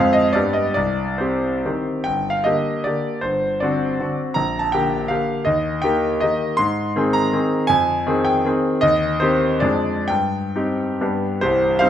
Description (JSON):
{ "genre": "classical, romantic triple-time dance for piano with dotted rhythms", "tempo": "123-172 BPM", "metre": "3/4", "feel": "rubato", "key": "G minor, C minor from 6.6 s", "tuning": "A4 = 440 Hz", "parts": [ { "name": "bright concert grand piano", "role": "solo", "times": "0.0-11.9 s", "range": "C1 to C6", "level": "-17 LUFS", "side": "equal", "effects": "none" } ], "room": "moderate recital hall reverb, RT60 1.5 s", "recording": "none", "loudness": "-18 LUFS", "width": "side -10 dB against mid", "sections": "0.0-2.0 A section; 2.0-11.4 B section", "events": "none", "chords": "0.3 G; 0.8 Cm; 2.0 Gm; 3.2 D7/G; 4.4 Gm/Bb; 5.5 Eb; 6.6 Ab; 7.7 Fm7; 8.8 Cm/Eb; 9.6 Ddim/F; 10.1 Cm/G; 11.0 G" }